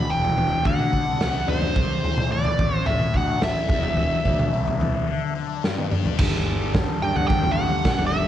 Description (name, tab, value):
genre	psychedelic rock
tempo	108 BPM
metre	4/4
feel	straight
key	unclear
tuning	A4 = 440 Hz
part	dark smooth lead guitar	melody	0.0-8.3 s	C5 to B5	-25 LUFS	right 2 dB	wah, overdrive, slapback echo
part	fuzz guitar	riff	0.0-8.3 s	E2 to D4	-28 LUFS	left 9 dB	distortion, phaser
part	fuzz fingered electric bass	bass	0.0-8.3 s	E1 to A2	-28 LUFS	right 1 dB	overdrive
part	raw garage drum kit	drums	0.2-8.1 s	crash cymbal, kick drum, snare drum, toms	-23 LUFS	equal	none
part	rich chamber string section	sustained chords	6.2-8.3 s	G3 to A4	-31 LUFS	right 12 dB	none
room	light reverb, studio ambience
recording	1960s-style stereo with parts hard left and right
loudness	-20 LUFS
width	side -11 dB against mid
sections	0.0-6.2 A section; 6.2-8.3 B section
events	break 5.1-6.2; drum fill 5.6-6.2; lead electric guitar solo 6.2-8.3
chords	0.0 Em; 0.7 D; 1.8 C; 2.6 A5; 3.7 E5; 5.1 N.C.; 5.6 G5; 6.2 Gsus2